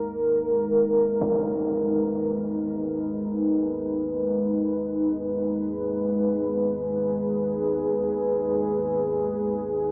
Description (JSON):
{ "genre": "dark ambient drone", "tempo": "free time", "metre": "none", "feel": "none", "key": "G# minor", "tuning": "A4 = 441 Hz", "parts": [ { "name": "deep dark ambient pad", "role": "sustained chords", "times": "0.0-9.9 s", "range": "G#3 to B4", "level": "-22 LUFS", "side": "equal", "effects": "chorus, built-in reverb" }, { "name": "deep rumbling drone", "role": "drone", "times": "0.0-9.9 s", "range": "G#1 to D#2", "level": "-39 LUFS", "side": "equal", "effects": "built-in reverb, lush chorus" }, { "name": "impact", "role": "percussion", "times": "1.2-1.4 s", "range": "none", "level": "-36 LUFS", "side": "equal", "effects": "low-pass filter on sfx" } ], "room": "wet huge ambient reverb, RT60 7.6 s", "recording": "AM radio sound", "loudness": "-22 LUFS", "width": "side -30 dB against mid", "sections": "0.0-9.9 A section", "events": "none", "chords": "0.0 G#m" }